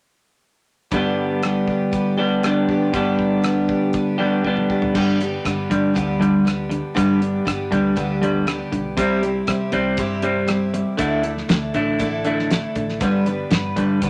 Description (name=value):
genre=folk rock and heartland rock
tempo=119 BPM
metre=4/4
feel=straight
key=G major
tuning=A4 = 440 Hz
part: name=picked twelve-string acoustic guitar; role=accompaniment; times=0.9-14.1 s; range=G2 to B4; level=-27 LUFS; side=equal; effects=none
part: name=electric guitar through a small old amp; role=riff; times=0.9-14.1 s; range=G2 to G4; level=-22 LUFS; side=equal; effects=spring reverb
part: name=hollow-body short-scale picked electric bass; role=bass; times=0.9-14.1 s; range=G1 to C3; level=-34 LUFS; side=equal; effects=none
part: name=damped 70s drum kit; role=drums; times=0.9-14.1 s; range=crash cymbal, hi-hat, kick drum, rim click, snare drum, toms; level=-27 LUFS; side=equal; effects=none
room=wet studio reverb, RT60 0.6 s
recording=none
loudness=-20 LUFS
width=mono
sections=0.9-5.0 A section; 5.0-14.1 B section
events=drum fill 4.4-5.0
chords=0.9 G; 9.0 C; 11.0 Dsus2; 13.0 G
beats=| 0.92 1.43 1.93 2.43 | 2.94 3.44 3.94 4.45 | 4.95 5.46 5.96 6.46 | 6.97 7.47 7.97 8.48 | 8.98 9.48 9.99 10.49 | 11.00 11.50 12.00 12.51 | 13.01 13.51 14.02